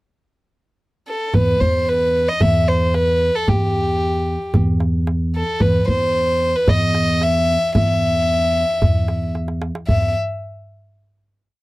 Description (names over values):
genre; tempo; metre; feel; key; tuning
Arabic maqam ensemble; 112 BPM; 4/4; straight; E maqam nahawand; A4 = 440 Hz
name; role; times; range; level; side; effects
warm violin; melody; 1.1-10.1 s; G4 to E5; -19 LUFS; equal; none
upright bass; bass; 1.3-10.1 s; E2; -20 LUFS; equal; none
darbuka; percussion; 1.3-10.1 s; none; -21 LUFS; right 1 dB; none
room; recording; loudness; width
little or no reverb; dry, close 1970s-style studio recording; -16 LUFS; side -19 dB against mid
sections
0.0-1.3 pickup bar; 1.3-9.9 A section; 9.9-11.6 final note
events
drum fill 9.4-9.9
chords
none